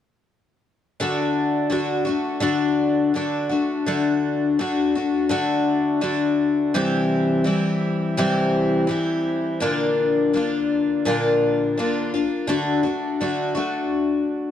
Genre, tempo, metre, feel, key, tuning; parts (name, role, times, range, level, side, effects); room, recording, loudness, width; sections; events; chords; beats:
rock; 84 BPM; 4/4; straight; D mixolydian; A4 = 440 Hz
picked twelve-string acoustic guitar; solo; 1.0-14.5 s; Bb2 to F#4; -19 LUFS; left 2 dB
light reverb; dark, warm production; -19 LUFS; side -10 dB against mid
1.0-12.5 A section; 12.5-14.5 B section
1.0 D; 6.7 C; 9.6 Bb; 12.5 D
| 1.00 1.72 2.44 3.16 | 3.87 4.59 5.31 6.03 | 6.75 7.46 8.18 8.90 | 9.62 10.33 11.05 11.77 | 12.49 13.20 13.92